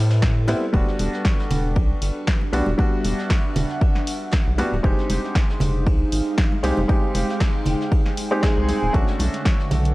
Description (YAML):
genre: deep house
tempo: 117 BPM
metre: 4/4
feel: swing 55% on 16ths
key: unclear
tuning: A4 = 438 Hz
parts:
  - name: felt-muted upright piano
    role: stabs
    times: 0.0-9.9 s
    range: G3 to Ab4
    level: -25 LUFS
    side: equal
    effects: sidechain pumping, analog delay
  - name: rubbery square bass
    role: bass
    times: 0.0-9.9 s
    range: D1 to A2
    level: -22 LUFS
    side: equal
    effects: tube saturation, sidechain pumping
  - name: ethereal airy pad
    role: texture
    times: 0.0-9.9 s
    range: D3 to G5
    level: -30 LUFS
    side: right 1 dB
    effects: ensemble chorus, built-in reverb, sidechain pumping
  - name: soft brush drum kit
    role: drums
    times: 0.1-9.8 s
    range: ride cymbal, snare drum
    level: -40 LUFS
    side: left 2 dB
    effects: sidechain pumping on cymbals, high-pass filter on cymbals, vintage 12-bit sampler grit, high-pass filter on snare, high-pass filter on room
  - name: electronic kick drum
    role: drums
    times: 0.2-9.6 s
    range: none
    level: -20 LUFS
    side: equal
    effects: vintage 12-bit sampler grit
  - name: punchy analog drum machine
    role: drums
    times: 0.2-9.9 s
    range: hi-hat, snare drum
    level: -29 LUFS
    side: equal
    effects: vintage 12-bit sampler grit
  - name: congas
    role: percussion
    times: 0.5-9.8 s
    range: none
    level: -29 LUFS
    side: right 1 dB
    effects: none
room: light reverb, small room ambience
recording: cassette tape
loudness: -18 LUFS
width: side -19 dB against mid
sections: 0.0-9.9 A section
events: none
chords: 0.0 Am9; 0.7 Em9; 4.8 Fm9; 8.9 Bm9